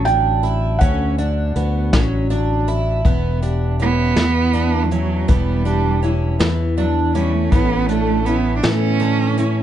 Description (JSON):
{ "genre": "acoustic folk duo or small band", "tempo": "54 BPM (dotted quarters)", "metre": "6/8", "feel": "straight", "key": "E dorian", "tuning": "A4 = 440 Hz", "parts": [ { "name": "felt-muted upright piano", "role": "melody", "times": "0.0-2.3 s", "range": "F#5 to G5", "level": "-22 LUFS", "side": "right 6 dB", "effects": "none" }, { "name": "fingerpicked steel-string acoustic guitar", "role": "accompaniment", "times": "0.0-9.6 s", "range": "E2 to A4", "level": "-24 LUFS", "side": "left 5 dB", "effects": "none" }, { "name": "fingerpicked twelve-string acoustic guitar", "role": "arpeggios", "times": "0.0-9.6 s", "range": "D3 to E4", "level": "-24 LUFS", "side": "right 4 dB", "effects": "tape echo" }, { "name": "fingered electric bass", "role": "bass", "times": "0.0-9.6 s", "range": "E1 to A2", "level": "-19 LUFS", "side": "equal", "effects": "none" }, { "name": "vintage brush drum kit", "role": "drums", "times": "0.1-9.6 s", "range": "hi-hat, kick drum, snare drum", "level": "-18 LUFS", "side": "left 1 dB", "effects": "none" }, { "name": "warm cello", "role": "second line", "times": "3.8-9.6 s", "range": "F3 to D4", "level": "-20 LUFS", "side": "right 6 dB", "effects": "none" } ], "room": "light reverb", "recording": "nothing above 10.9 kHz", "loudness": "-15 LUFS", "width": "side -11 dB against mid", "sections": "0.0-3.0 A section; 3.0-9.6 B section", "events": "cello solo 3.0-9.6", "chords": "0.0 D; 3.0 Em; 7.5 Aadd9" }